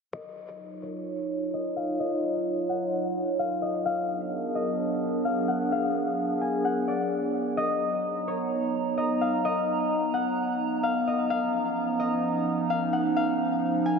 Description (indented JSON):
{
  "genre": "hip hop",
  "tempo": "129 BPM",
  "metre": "4/4",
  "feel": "half-time",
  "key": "Eb minor",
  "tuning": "A4 = 436 Hz",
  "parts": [
    { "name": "concert harp", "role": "melody", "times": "0.1-14.0 s", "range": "Db5 to Ab5", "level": "-29 LUFS", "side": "left 3 dB", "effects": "low-pass filter, diffuse ambient delay" },
    { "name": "warbly tape-like pad", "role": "sustained chords", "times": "0.7-14.0 s", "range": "F3 to A#5", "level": "-27 LUFS", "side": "right 2 dB", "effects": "chorus, built-in reverb, low-pass filter" }
  ],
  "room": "wet huge ambient reverb, RT60 4.2 s",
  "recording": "dreamy mix soaked in reverb",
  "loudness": "-25 LUFS",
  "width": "side -5 dB against mid",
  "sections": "0.1-14.0 A section",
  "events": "filter sweep 0.1-14.0",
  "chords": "0.1 Ebm9; 3.9 Bb7b9b13; 7.6 Bmaj7; 11.3 Db13",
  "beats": "| 0.14 0.60 1.07 1.53 | 2.00 2.46 2.93 3.39 | 3.86 4.32 4.79 5.25 | 5.72 6.18 6.65 7.11 | 7.58 8.04 8.51 8.97 | 9.44 9.90 10.37 10.84 | 11.30 11.77 12.23 12.70 | 13.16 13.63"
}